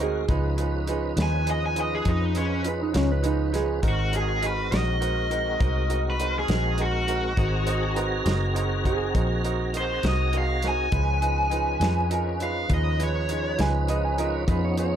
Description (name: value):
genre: slow blues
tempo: 68 BPM (dotted quarters)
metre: 12/8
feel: straight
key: Ab mixolydian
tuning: A4 = 440 Hz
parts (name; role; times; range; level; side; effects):
- clean lap steel guitar; second line; 0.0-15.0 s; Db4 to Ab5; -30 LUFS; right 4 dB; none
- bright upright piano; accompaniment; 0.0-15.0 s; Eb4 to Eb5; -31 LUFS; right 5 dB; none
- tonewheel organ; sustained chords; 0.0-15.0 s; F3 to Bb5; -32 LUFS; left 1 dB; slow rotary speaker, chorus vibrato
- vintage muted fingered electric bass; bass; 0.0-15.0 s; Gb1 to F2; -26 LUFS; left 1 dB; none
- warm soul drum kit; drums; 0.3-14.9 s; hi-hat, kick drum, snare drum; -28 LUFS; equal; none
- overdriven electric guitar; melody; 1.2-13.6 s; Db4 to Ab5; -27 LUFS; left 1 dB; none
room: light reverb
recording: none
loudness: -22 LUFS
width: side -9 dB against mid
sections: 0.0-15.0 A section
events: none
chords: 0.3 Db9; 3.8 Ab9; 10.9 Db9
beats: | 0.29 1.18 2.06 2.95 | 3.83 4.72 5.61 6.49 | 7.38 8.27 9.15 10.04 | 10.93 11.82 12.70 13.59 | 14.48